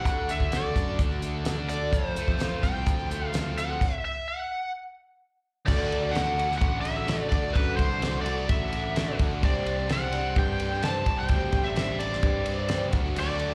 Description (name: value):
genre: folk rock and heartland rock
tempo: 128 BPM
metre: 4/4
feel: straight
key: unclear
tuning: A4 = 440 Hz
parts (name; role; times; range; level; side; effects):
- overdriven slide guitar; melody; 0.0-13.5 s; B4 to A5; -33 LUFS; equal; slapback echo
- picked plugged-in twelve-string acoustic guitar; accompaniment; 0.0-13.5 s; C3 to C5; -38 LUFS; equal; slapback echo
- mellow tonewheel organ; sustained chords; 0.0-13.5 s; F#4 to D6; -46 LUFS; equal; none
- overdriven electric guitar; riff; 0.0-13.5 s; F2 to G4; -37 LUFS; equal; slapback echo
- picked electric bass; bass; 0.0-13.5 s; A1 to G2; -33 LUFS; equal; none
- damped 70s drum kit; drums; 0.1-13.5 s; crash cymbal, hi-hat, kick drum, ride cymbal, snare drum; -31 LUFS; equal; none
room: studio reverb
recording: live gig heard through the venue's PA, club reverb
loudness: -27 LUFS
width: mono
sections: 0.0-5.7 A section; 5.7-13.5 B section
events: stop 3.8-5.7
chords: 0.1 D; 1.9 F; 3.8 N.C.; 5.7 D; 9.4 Csus2; 12.9 D